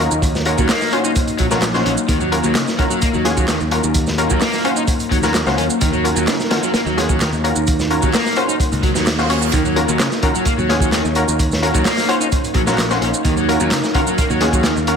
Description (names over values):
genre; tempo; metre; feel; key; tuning
breakbeat, breaks; 129 BPM; 4/4; straight; Eb minor; A4 = 438 Hz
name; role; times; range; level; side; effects
deep dark ambient pad; sustained chords; 0.0-15.0 s; Gb3 to F5; -23 LUFS; left 1 dB; chorus, built-in reverb, sidechain pumping
orchestra-hit-like synth stab; stabs; 0.0-15.0 s; Db4 to Db5; -21 LUFS; left 2 dB; built-in reverb, digital delay
picked electric bass; bass; 0.0-15.0 s; Bb1 to Eb2; -21 LUFS; equal; none
electronic shaker and handclaps; drums; 0.1-14.9 s; none; -26 LUFS; right 3 dB; none
crunchy breakbeat drum kit; drums; 0.2-15.0 s; hi-hat, kick drum, snare drum; -20 LUFS; equal; none
overdriven semi-hollow guitar; riff; 0.6-14.7 s; Db3 to Eb4; -22 LUFS; equal; digital delay
reverse cymbal; sound effects; 8.8-9.5 s; none; -28 LUFS; right 6 dB; none
room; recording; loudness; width
light reverb, small room ambience; none; -14 LUFS; side -6 dB against mid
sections
0.0-9.5 A section; 9.5-15.0 B section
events
reverse cymbal 8.8-9.5; drop 9.5-15.0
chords
0.0 Ebm7